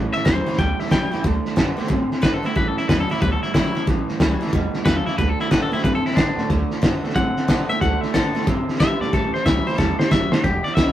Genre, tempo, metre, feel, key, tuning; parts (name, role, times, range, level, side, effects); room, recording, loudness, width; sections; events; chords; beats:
rockabilly; 183 BPM; 4/4; swing 64% on 8ths; A4 = 440 Hz
picked swing-style acoustic guitar; accompaniment; 0.0-10.9 s; E2 to F#4; -31 LUFS; left 1 dB
electric guitar through a small old amp; riff; 0.0-10.9 s; E2 to C4; -25 LUFS; right 2 dB; vibrato effect
upright bass; bass; 0.0-10.9 s; E1 to B2; -27 LUFS; equal
clean electric guitar; melody; 0.1-10.9 s; D4 to G5; -24 LUFS; left 2 dB
cloth-damped thuddy drum kit; drums; 0.1-10.9 s; hi-hat, kick drum, snare drum; -20 LUFS; equal
light reverb; rough rehearsal-room recording; -18 LUFS; side -12 dB against mid
0.0-10.9 A section
clean electric guitar solo 0.0-10.9; drum fill 9.8-10.4
0.0 A7; 1.2 D7; 2.6 A7; 5.2 D7; 9.1 A7
0.26 0.59 0.92 | 1.24 1.57 1.90 2.23 | 2.56 2.89 3.21 3.54 | 3.87 4.20 4.53 4.86 | 5.19 5.51 5.84 6.17 | 6.50 6.83 7.16 7.49 | 7.81 8.14 8.47 8.80 | 9.13 9.46 9.79 10.11 | 10.44 10.77